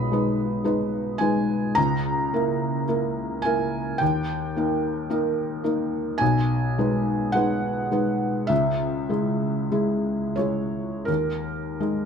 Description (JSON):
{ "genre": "classical, romantic nocturne for solo piano", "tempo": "42-57 BPM", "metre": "4/4", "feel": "rubato", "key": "G# minor", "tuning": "A4 = 439 Hz", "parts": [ { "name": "felt-muted upright piano", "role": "solo", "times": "0.0-12.1 s", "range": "B1 to D#6", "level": "-22 LUFS", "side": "equal", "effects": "none" } ], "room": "moderate large studio reverb, RT60 1.3 s", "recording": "minimal, uncompressed stereo recording", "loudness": "-22 LUFS", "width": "side -6 dB against mid", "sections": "0.0-12.1 A section", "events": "none", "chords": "0.0 G#m/B; 1.8 A#dim/C#; 4.0 D#; 6.2 G#m/B; 8.5 C#m; 11.1 D#sus4", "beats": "0.66 | 1.77 2.87 4.01 5.09 | 6.21 7.35 8.50 9.72 | 11.08" }